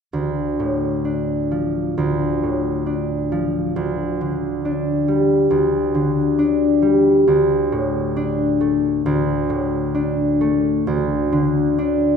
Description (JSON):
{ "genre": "classical", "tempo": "67 BPM", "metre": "4/4", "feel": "rubato", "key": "D minor", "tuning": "A4 = 440 Hz", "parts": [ { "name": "concert harp", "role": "accompaniment", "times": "0.1-12.2 s", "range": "D2 to D4", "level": "-17 LUFS", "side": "left 1 dB", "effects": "none" } ], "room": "wet scoring stage reverb, RT60 1.5 s", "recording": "none", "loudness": "-17 LUFS", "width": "side -6 dB against mid", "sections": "0.1-12.2 A section", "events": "none", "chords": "0.1 Dm; 3.8 Dsus4; 7.3 D5; 10.9 N.C.", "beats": "| 0.13 1.05 1.97 2.86 | 3.77 4.65 5.51 6.39 | 7.28 8.17 9.06 9.96 | 10.87 11.79" }